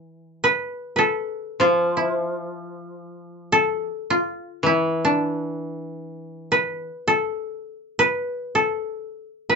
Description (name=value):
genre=japanese traditional, Japanese chamber music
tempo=79 BPM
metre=4/4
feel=rubato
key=E in sen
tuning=A4 = 436 Hz
part: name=koto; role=melody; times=0.0-9.6 s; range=D4 to B4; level=-21 LUFS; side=equal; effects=none
part: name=koto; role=accompaniment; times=0.0-6.9 s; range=E3 to F3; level=-24 LUFS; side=equal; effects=none
room=moderate small room reverb, RT60 0.5 s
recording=nothing above 7.7 kHz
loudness=-20 LUFS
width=side -4 dB against mid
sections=0.0-9.6 A section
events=none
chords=none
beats=| 0.04 0.83 1.60 2.36 | 3.12 3.88 4.65 5.40 | 6.14 6.89 7.62 8.36 | 9.11